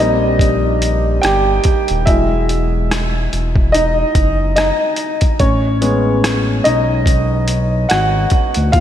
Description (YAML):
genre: R&B, neo-soul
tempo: 72 BPM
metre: 4/4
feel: swing 57% on 16ths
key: unclear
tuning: A4 = 440 Hz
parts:
  - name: warm upright piano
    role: accompaniment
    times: 0.0-8.8 s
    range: F#3 to G5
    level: -15 LUFS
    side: equal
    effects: slapback echo
  - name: smooth synth bass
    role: bass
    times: 0.0-8.8 s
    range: Eb1 to Eb2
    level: -17 LUFS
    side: equal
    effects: none
  - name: boom bap sampler-style drum kit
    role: drums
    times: 0.4-8.8 s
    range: hi-hat, kick drum, rim click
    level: -17 LUFS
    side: equal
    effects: none
room: moderate lush hall reverb, RT60 2.8 s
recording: big arena sound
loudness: -12 LUFS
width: side -10 dB against mid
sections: 0.0-8.8 A section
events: upright piano solo 0.0-8.8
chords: 0.0 Abmaj9 (rootless); 2.1 Emaj9; 5.4 Amaj9